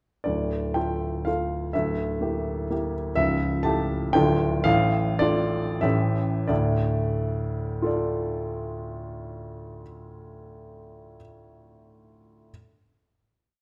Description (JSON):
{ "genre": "classical, romantic triple-time dance for piano with dotted rhythms", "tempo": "87-133 BPM", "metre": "3/4", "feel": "rubato", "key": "D minor", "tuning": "A4 = 441 Hz", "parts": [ { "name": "warm grand piano", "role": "solo", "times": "0.2-12.5 s", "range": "C#1 to A5", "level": "-26 LUFS", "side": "equal", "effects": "none" } ], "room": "wet recital hall reverb, RT60 1.2 s", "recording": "dark, warm production", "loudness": "-25 LUFS", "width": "mono", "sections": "0.3-6.5 A section; 6.5-10.4 final chord", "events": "slowing down 2.5-6.5", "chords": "0.3 Dm; 1.8 Em7b5/D; 3.2 A7/C#; 4.2 Dm; 4.7 Dm/A; 5.8 A7; 6.5 Dm" }